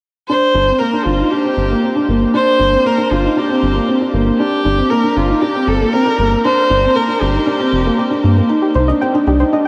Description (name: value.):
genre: piano and strings electronica.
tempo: 117 BPM.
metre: 4/4.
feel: straight.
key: G minor.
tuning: A4 = 438 Hz.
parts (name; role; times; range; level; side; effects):
warm viola; melody; 0.3-8.2 s; F4 to C5; -18 LUFS; equal; analog delay.
felt-muted upright piano; riff; 0.3-9.6 s; Bb3 to Eb4; -18 LUFS; equal; lush chorus, low-pass filter, analog delay.
round analog bass; bass; 0.5-9.4 s; F1 to G2; -19 LUFS; equal; none.
soft round pluck; arpeggios; 8.6-9.7 s; G4 to G5; -21 LUFS; equal; chorus, analog delay.
room: wet huge ambient reverb, RT60 7.9 s.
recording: dreamy mix soaked in reverb.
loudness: -14 LUFS.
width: mono.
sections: 0.3-9.7 A section.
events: none.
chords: 0.3 Gm; 8.5 Cm.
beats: | 0.29 0.80 1.32 1.83 | 2.34 2.85 3.37 3.88 | 4.39 4.91 5.42 5.93 | 6.45 6.96 7.47 7.98 | 8.50 9.01 9.52.